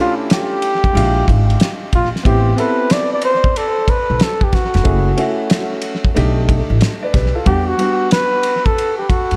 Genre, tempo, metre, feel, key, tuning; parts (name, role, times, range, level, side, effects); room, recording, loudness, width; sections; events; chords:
hip hop, jazz-hop; 92 BPM; 4/4; swing 65% on 16ths; E minor; A4 = 441 Hz
breathy flugelhorn; melody; 0.0-9.4 s; E#4 to D5; -20 LUFS; equal; tape echo
warm upright piano; accompaniment; 0.0-8.7 s; G3 to D5; -24 LUFS; equal; tape echo
cloth-damped thuddy drum kit; drums; 0.3-9.4 s; hi-hat, kick drum, ride cymbal, snare drum; -20 LUFS; equal; tape echo
upright bass; bass; 1.0-9.4 s; E1 to G2; -18 LUFS; equal
light reverb, small room ambience; echo-heavy mix; -16 LUFS; mono
0.0-9.4 A section
0.0 Bm7 (rootless); 0.9 A#7#11; 2.3 Amadd9; 4.9 F#m7; 6.2 B7alt; 7.5 Em9